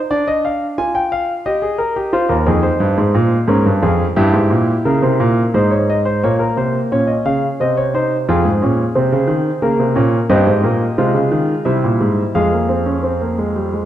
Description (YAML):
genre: classical, baroque-style 4-part fugue for grand piano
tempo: 88 BPM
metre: 3/4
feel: straight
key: F minor from 10.3 s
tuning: A4 = 438 Hz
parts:
  - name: warm concert grand piano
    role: solo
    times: 0.1-13.9 s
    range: Eb2 to Ab5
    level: -14 LUFS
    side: equal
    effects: none
room: wet recital hall reverb, RT60 1.6 s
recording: dark, warm production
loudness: -13 LUFS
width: side -12 dB against mid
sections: 0.0-6.2 A section; 6.2-13.9 B section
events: none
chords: 0.1 Ddim; 1.5 Eb/G; 2.1 Ab; 3.5 Bbm7; 4.2 Gdim7; 5.5 Ab; 6.2 Bbmadd9; 7.6 Cm; 8.3 Fm; 9.6 Bbm; 10.3 Abmaj9/G; 11.0 Fm/C; 11.7 C; 12.3 Fm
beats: | 0.11 0.78 1.46 | 2.14 2.81 3.49 | 4.17 4.86 5.54 | 6.23 6.91 7.60 | 8.28 8.95 9.63 | 10.30 10.98 11.65 | 12.34 13.03 13.71